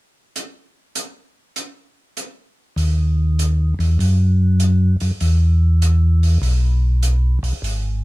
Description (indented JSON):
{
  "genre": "soul jazz organ trio",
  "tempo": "99 BPM",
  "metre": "4/4",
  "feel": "swing 67% on 8ths",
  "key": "unclear",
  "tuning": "A4 = 440 Hz",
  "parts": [
    { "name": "hi-hat", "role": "drums", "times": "0.4-7.8 s", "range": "none", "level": "-29 LUFS", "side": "right 2 dB", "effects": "none" },
    { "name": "mellow tonewheel organ", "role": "bass", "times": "2.8-8.0 s", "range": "Ab1 to Gb2", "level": "-14 LUFS", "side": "equal", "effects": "slow rotary speaker" }
  ],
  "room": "light reverb",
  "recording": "minimal, uncompressed stereo recording",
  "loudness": "-15 LUFS",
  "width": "side -20 dB against mid",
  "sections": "0.3-2.8 A section; 2.8-8.0 B section",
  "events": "none",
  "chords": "none"
}